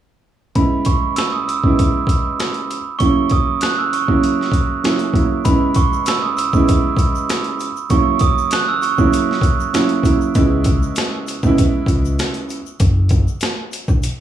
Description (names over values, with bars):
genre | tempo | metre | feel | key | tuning
hip hop, boom-bap hip-hop | 98 BPM | 4/4 | swing 54% on 16ths | C# dorian | A4 = 440 Hz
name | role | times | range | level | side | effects
glockenspiel with rubber mallets | melody | 0.6-10.3 s | B5 to F#6 | -21 LUFS | right 6 dB | slapback echo, plate reverb
dark upright piano | accompaniment | 0.6-12.6 s | C#3 to E4 | -19 LUFS | right 3 dB | cassette tape, plate reverb
boom bap sampler-style drum kit | drums | 0.6-14.2 s | hi-hat, kick drum, snare drum | -18 LUFS | equal | overdrive
egg shaker | percussion | 5.5-14.2 s | none | -37 LUFS | left 11 dB | none
upright bass | bass | 10.4-14.0 s | E1 to C#2 | -19 LUFS | left 1 dB | none
room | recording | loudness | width
light reverb | studio reverb | -14 LUFS | side -10 dB against mid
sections
0.6-5.5 A section; 5.5-14.2 B section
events
none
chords
0.6 C#m7; 3.0 F#7; 5.5 C#m7; 7.9 F#7; 10.4 C#m7; 12.8 N.C.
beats
| 0.56 1.17 1.78 2.39 | 3.00 3.62 4.23 4.84 | 5.45 6.07 6.68 7.29 | 7.90 8.52 9.13 9.74 | 10.35 10.96 11.58 12.19 | 12.80 13.41 14.03